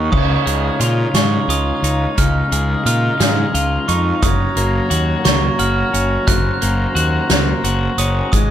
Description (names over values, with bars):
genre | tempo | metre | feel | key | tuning
post-rock | 58 BPM (dotted quarters) | 6/8 | straight | Db major | A4 = 441 Hz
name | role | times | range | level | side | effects
hand-pumped harmonium | sustained chords | 0.0-8.5 s | Eb4 to Bb5 | -24 LUFS | left 1 dB | none
glockenspiel with brass mallets | arpeggios | 0.0-8.5 s | Db6 to Gb6 | -23 LUFS | right 4 dB | digital delay
twelve-string electric guitar | arpeggios | 0.0-8.5 s | Gb2 to Gb4 | -21 LUFS | left 3 dB | spring reverb, digital delay
fuzz fingered electric bass | bass | 0.0-8.5 s | Gb1 to Bb2 | -18 LUFS | equal | overdrive
soft-mallet drum kit | drums | 0.1-8.5 s | crash cymbal, hi-hat, kick drum, snare drum | -19 LUFS | equal | none
room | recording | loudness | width
light reverb, small room ambience | none | -14 LUFS | side -10 dB against mid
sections
0.1-8.5 A section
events
none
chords
0.1 Dbadd9; 4.2 Gb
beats
| 0.12 1.15 | 2.18 3.20 | 4.23 5.26 | 6.28 7.31 | 8.33